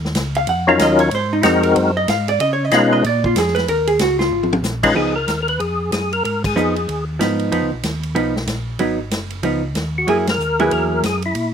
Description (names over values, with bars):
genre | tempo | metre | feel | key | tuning
soul jazz organ trio | 188 BPM | 4/4 | swing 62% on 8ths | Db mixolydian | A4 = 439 Hz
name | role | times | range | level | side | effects
mellow tonewheel organ | bass | 0.0-11.5 s | Gb1 to Db3 | -23 LUFS | equal | chorus vibrato, slow rotary speaker
swinging big-band drum kit | drums | 0.0-11.4 s | crash cymbal, hi-hat, kick drum, ride cymbal, snare drum, toms | -25 LUFS | equal | none
vintage hollow-body jazz guitar | accompaniment | 0.4-11.0 s | F3 to Gb5 | -18 LUFS | right 2 dB | slapback echo
percussive tonewheel organ | melody | 0.7-7.0, 10.0-11.5 s | Gb3 to Cb5 | -17 LUFS | left 2 dB | slow rotary speaker, chorus vibrato
room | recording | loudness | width
little or no reverb | recorded outdoors, with no room sound | -15 LUFS | side -7 dB against mid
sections
0.0-5.0 A section; 5.0-11.5 B section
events
hollow-body jazz guitar solo 0.0-5.0; drum fill 4.3-4.6; band accent 6.4, 10.2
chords
0.0 Ebm7; 1.1 Ab9; 2.4 Db9; 3.0 Bb5; 3.7 Db69; 4.3 Absus2; 5.0 Db9; 8.8 Abm7; 9.4 Db9; 10.1 Gb9